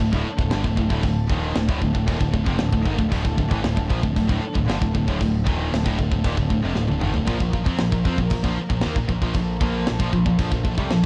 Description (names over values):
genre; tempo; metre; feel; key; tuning
heavy metal; 116 BPM; 4/4; straight; D phrygian; A4 = 439 Hz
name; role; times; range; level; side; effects
clear studio string section; sustained chords; 0.0-11.1 s; F3 to Bb4; -36 LUFS; equal; none
heavy high-gain guitar; riff; 0.0-11.0 s; D2 to C4; -30 LUFS; equal; distortion
overdriven electric guitar; riff; 0.0-11.0 s; D2 to C4; -32 LUFS; equal; none
tight distorted guitar; riff; 0.0-11.0 s; D2 to C4; -30 LUFS; equal; distortion
growling picked electric bass; bass; 0.0-11.1 s; D1 to F2; -28 LUFS; equal; overdrive
tight metal drum kit; drums; 0.0-11.1 s; crash cymbal, kick drum, snare drum, toms; -27 LUFS; equal; vintage 12-bit sampler grit
room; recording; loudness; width
light reverb; dark, warm production; -22 LUFS; mono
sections
0.0-11.1 A section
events
drum fill 6.8-7.3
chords
0.0 Dm; 7.3 Bb5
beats
0.01 0.53 | 1.05 1.57 2.09 2.61 | 3.13 3.65 4.17 4.69 | 5.21 5.73 6.25 6.77 | 7.29 7.80 8.32 8.84 | 9.36 9.88 10.39 10.91